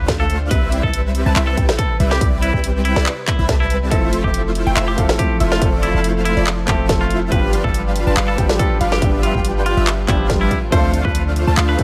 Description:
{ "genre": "future bass", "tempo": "141 BPM", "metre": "4/4", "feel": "swing 53% on 16ths, half-time", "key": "F lydian", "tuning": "A4 = 441 Hz", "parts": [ { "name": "twangy electric guitar", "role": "melody", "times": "0.0-11.8 s", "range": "E4 to C5", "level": "-27 LUFS", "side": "equal", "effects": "sidechain pumping, delay" }, { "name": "rich chamber string section", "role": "sustained chords", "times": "0.0-11.8 s", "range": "C3 to B4", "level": "-32 LUFS", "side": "equal", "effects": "none" }, { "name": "unison pluck", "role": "arpeggios", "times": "0.0-11.8 s", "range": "D5 to A5", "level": "-31 LUFS", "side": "equal", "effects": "sidechain pumping, delay" }, { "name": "supersaw chords", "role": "riff", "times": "0.0-11.8 s", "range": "G3 to A5", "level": "-25 LUFS", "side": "equal", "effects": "ensemble chorus, sidechain pumping" }, { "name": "warm 808-style bass", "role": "bass", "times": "0.0-11.8 s", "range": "F1 to D2", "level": "-22 LUFS", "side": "equal", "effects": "sidechain pumping" }, { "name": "electronic kick drum", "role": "drums", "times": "0.1-11.8 s", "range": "none", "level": "-22 LUFS", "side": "equal", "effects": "none" }, { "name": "trap drum kit", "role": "drums", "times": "0.1-11.8 s", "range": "handclaps, hi-hat, snare drum", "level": "-24 LUFS", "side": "equal", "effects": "none" }, { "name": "warm baby grand piano", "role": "accompaniment", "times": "3.9-11.8 s", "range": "F3 to E5", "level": "-26 LUFS", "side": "equal", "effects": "sidechain pumping" } ], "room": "light reverb", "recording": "none", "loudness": "-17 LUFS", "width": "mono", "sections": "0.0-11.8 A section", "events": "none", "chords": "0.0 Dm7; 0.5 Cmaj7; 3.9 Fmaj7; 7.3 G7; 10.5 Dm7" }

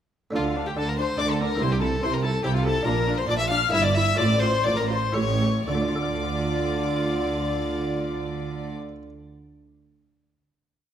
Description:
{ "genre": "classical, baroque-style concerto movement with solo episodes", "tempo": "111-144 BPM", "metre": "3/4", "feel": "straight", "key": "D minor", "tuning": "A4 = 440 Hz", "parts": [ { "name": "dark studio violin section", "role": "second line", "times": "0.3-8.7 s", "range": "F4 to F5", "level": "-32 LUFS", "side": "left 3 dB", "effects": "none" }, { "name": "buff-stop harpsichord", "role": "accompaniment", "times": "0.3-9.1 s", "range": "G2 to F5", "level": "-33 LUFS", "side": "right 1 dB", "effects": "none" }, { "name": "warm chamber viola section", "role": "accompaniment", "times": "0.3-8.7 s", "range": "D4 to G4", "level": "-32 LUFS", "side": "right 1 dB", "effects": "none" }, { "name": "rich chamber cello section", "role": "bass", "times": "0.3-8.7 s", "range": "G2 to D3", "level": "-28 LUFS", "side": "right 3 dB", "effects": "none" }, { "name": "warm studio double bass section", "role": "bass", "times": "0.3-8.7 s", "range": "G1 to D2", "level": "-29 LUFS", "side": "right 2 dB", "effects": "none" }, { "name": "rich violin", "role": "melody", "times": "0.4-8.7 s", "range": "F4 to F5", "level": "-28 LUFS", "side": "left 3 dB", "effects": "none" }, { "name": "warm chamber violin section", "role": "melody", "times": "0.4-8.7 s", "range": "F5 to F6", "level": "-31 LUFS", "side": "left 8 dB", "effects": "none" } ], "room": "moderate recital hall reverb, RT60 1.6 s", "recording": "none", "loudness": "-22 LUFS", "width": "side -9 dB against mid", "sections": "0.3-5.7 ritornello; 5.7-8.9 final chord", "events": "slowing down 2.2-5.7", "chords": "0.3 Dm; 1.6 Am/C; 2.9 Bb; 3.7 Edim/G; 4.2 Bbmaj9/A; 5.1 A7; 5.7 Dm" }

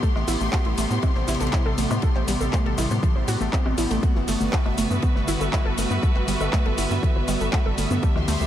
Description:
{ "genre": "melodic techno", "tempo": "120 BPM", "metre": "4/4", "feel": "straight", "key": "unclear", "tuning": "A4 = 441 Hz", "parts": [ { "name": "evolving wavetable pad", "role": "sustained chords", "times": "0.0-8.5 s", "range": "C3 to B3", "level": "-29 LUFS", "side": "equal", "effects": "chorus, built-in reverb, sidechain pumping" }, { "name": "warbly dusty pluck", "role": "arpeggios", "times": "0.0-8.5 s", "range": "E3 to C5", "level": "-28 LUFS", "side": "right 1 dB", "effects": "chorus, sidechain pumping, tape echo" }, { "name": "damped 70s drum kit", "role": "drums", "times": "0.0-8.4 s", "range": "hi-hat, ride cymbal, snare drum", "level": "-41 LUFS", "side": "left 2 dB", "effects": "none" }, { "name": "electronic kick drum", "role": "drums", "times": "0.0-8.1 s", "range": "none", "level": "-22 LUFS", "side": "equal", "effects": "none" }, { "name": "techno drum kit", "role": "drums", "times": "0.0-8.5 s", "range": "handclaps, hi-hat, shaker, woodblock", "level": "-31 LUFS", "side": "left 1 dB", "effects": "none" }, { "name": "bright symphonic string section", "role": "texture", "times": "0.0-8.5 s", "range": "F#4 to C6", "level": "-31 LUFS", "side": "left 1 dB", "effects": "sidechain pumping" }, { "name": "tight sequencer bass", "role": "bass", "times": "0.2-8.5 s", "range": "G1 to A2", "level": "-26 LUFS", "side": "equal", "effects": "sidechain pumping" } ], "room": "light reverb, studio reverb", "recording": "none", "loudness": "-20 LUFS", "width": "side -11 dB against mid", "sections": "0.0-8.5 A section", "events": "none", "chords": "0.0 Amadd9; 4.0 G" }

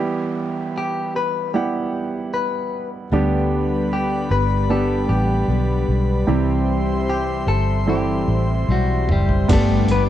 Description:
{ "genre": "pop ballad", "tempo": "76 BPM", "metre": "4/4", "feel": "straight", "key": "G major", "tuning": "A4 = 440 Hz", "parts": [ { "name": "clear baby grand piano", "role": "accompaniment", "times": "0.0-10.1 s", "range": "G2 to F#5", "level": "-23 LUFS", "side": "right 4 dB", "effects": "none" }, { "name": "downlifter and impact", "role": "sound effects", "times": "0.0-3.1, 9.7-10.1 s", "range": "none", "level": "-34 LUFS", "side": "equal", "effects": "none" }, { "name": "clean electric guitar", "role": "melody", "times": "0.8-10.0 s", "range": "G3 to B4", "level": "-24 LUFS", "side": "left 3 dB", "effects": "none" }, { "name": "airy breathy pad", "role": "sustained chords", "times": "3.1-10.1 s", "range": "G3 to D6", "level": "-27 LUFS", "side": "right 1 dB", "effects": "chorus" }, { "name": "fingerpicked steel-string acoustic guitar", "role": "arpeggios", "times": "3.1-10.1 s", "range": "G2 to G4", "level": "-26 LUFS", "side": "left 10 dB", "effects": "none" }, { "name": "vintage muted fingered electric bass", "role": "bass", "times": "3.1-10.1 s", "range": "F#1 to D2", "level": "-20 LUFS", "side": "equal", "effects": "none" }, { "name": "trip hop sampler-style drum kit", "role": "drums", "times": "8.7-10.1 s", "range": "crash cymbal, hi-hat, kick drum, toms", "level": "-22 LUFS", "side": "equal", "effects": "none" } ], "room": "little or no reverb", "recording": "dry, close 1970s-style studio recording", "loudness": "-18 LUFS", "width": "side -12 dB against mid", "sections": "0.0-9.5 A section", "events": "drum fill 8.7-9.5; impact 9.5-10.1", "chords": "0.0 Em; 3.1 G; 6.3 C; 9.5 G" }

